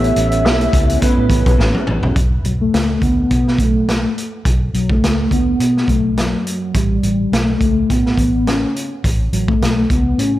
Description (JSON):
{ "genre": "indie pop, bedroom pop", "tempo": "105 BPM", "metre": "4/4", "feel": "swing 55% on 16ths", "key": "unclear", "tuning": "A4 = 440 Hz", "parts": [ { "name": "soft octave-layered synth lead", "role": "melody", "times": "0.0-10.4 s", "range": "F#3 to E5", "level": "-18 LUFS", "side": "left 1 dB", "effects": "ensemble chorus, diffuse ambient delay" }, { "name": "electric guitar through a small old amp", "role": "accompaniment", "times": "0.0-2.2 s", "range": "A2 to C#4", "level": "-23 LUFS", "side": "left 2 dB", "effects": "ensemble chorus, warbly pitch drift" }, { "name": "mellow tine electric piano", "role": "accompaniment", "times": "0.0-2.2 s", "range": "B3 to C#5", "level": "-23 LUFS", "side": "right 3 dB", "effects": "medium stereo tremolo" }, { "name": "vintage muted fingered electric bass", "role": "bass", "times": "0.0-10.4 s", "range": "A1 to B2", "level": "-19 LUFS", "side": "equal", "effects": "none" }, { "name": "raw garage drum kit", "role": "drums", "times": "0.0-10.3 s", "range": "hi-hat, kick drum, snare drum, toms", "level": "-18 LUFS", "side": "equal", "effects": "none" } ], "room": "light reverb, small room ambience", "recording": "none", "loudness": "-13 LUFS", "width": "side -15 dB against mid", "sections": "0.0-2.2 A section; 2.2-10.4 B section", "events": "drum fill 1.6-2.2", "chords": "0.0 A9; 2.2 B7(no3); 6.7 A9" }